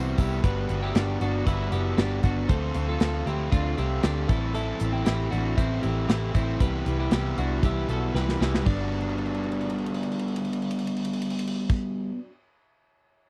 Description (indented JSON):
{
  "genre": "jangly indie pop",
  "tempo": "117 BPM",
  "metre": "4/4",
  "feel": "straight",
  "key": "G major",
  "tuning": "A4 = 439 Hz",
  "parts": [
    { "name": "raw garage guitar", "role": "accompaniment", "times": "0.0-12.3 s", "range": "A2 to F#4", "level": "-32 LUFS", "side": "equal", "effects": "overdrive" },
    { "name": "twelve-string electric guitar", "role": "arpeggios", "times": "0.0-11.8 s", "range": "B3 to C5", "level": "-35 LUFS", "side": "equal", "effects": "tube saturation, tape echo" },
    { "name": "vintage muted picked electric bass", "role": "bass", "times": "0.0-11.8 s", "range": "F#1 to D2", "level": "-30 LUFS", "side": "equal", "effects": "none" },
    { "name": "modern studio drum kit", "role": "drums", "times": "0.2-11.8 s", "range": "crash cymbal, hi-hat, kick drum, ride cymbal, snare drum", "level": "-28 LUFS", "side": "equal", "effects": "none" }
  ],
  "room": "little or no reverb",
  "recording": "dry, close 1970s-style studio recording",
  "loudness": "-26 LUFS",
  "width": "mono",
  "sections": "0.0-8.7 A section; 8.7-12.8 B section",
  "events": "drum fill 8.1-8.7, 8.9-11.7",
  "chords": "0.4 Gmaj7; 2.5 Dm7; 4.3 Am; 6.6 Cmaj7; 8.7 Gmaj7"
}